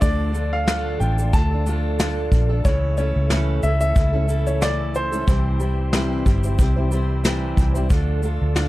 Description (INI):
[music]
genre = acoustic pop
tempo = 91 BPM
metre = 4/4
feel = swing 55% on 16ths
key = unclear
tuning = A4 = 439 Hz
[part]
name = warm upright piano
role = melody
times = 0.0-7.2 s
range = C5 to A5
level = -27 LUFS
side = left 1 dB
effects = digital delay
[part]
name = fingerpicked steel-string acoustic guitar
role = accompaniment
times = 0.0-8.7 s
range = C3 to C5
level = -26 LUFS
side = right 1 dB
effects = none
[part]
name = bright tonewheel organ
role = sustained chords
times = 0.0-8.7 s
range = C3 to A3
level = -35 LUFS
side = left 1 dB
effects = overdrive, chorus vibrato, lush chorus
[part]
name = vintage muted fingered electric bass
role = bass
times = 0.0-8.7 s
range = G1 to D2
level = -21 LUFS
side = equal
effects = none
[part]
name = vintage brush drum kit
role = drums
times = 0.0-8.7 s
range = kick drum, shaker, snare drum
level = -20 LUFS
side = equal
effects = none
[sound]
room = little or no reverb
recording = dark, warm production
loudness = -18 LUFS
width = side -17 dB against mid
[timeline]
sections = 0.0-7.9 A section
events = none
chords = 0.0 Dm; 2.6 A/C#; 5.3 C; 7.9 Dm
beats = | 0.02 0.68 1.33 1.99 | 2.65 3.30 3.96 4.62 | 5.27 5.93 6.59 7.25 | 7.90 8.56